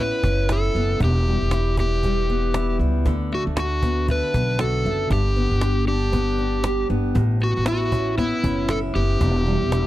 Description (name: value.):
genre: acoustic pop.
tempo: 117 BPM.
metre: 4/4.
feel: swing 60% on 16ths.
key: D major.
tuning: A4 = 440 Hz.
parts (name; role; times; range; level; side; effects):
overdriven slide guitar; melody; 0.0-9.9 s; E4 to B4; -24 LUFS; left 1 dB; none.
fingerpicked steel-string acoustic guitar; accompaniment; 0.0-9.9 s; E2 to G4; -26 LUFS; left 1 dB; none.
upright bass; bass; 0.0-9.9 s; E1 to D2; -22 LUFS; equal; none.
cajon; drums; 0.1-9.9 s; none; -25 LUFS; equal; none.
room: little or no reverb.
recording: dry, close 1970s-style studio recording.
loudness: -19 LUFS.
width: side -15 dB against mid.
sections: 0.0-9.9 A section.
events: none.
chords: 0.0 Aadd9; 1.0 Em; 3.1 D6; 5.1 G; 7.2 Aadd9; 9.2 Em.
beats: 0.49 | 1.00 1.52 2.03 2.54 | 3.06 3.57 4.08 4.60 | 5.11 5.62 6.13 6.65 | 7.16 7.67 8.19 8.70 | 9.21 9.73.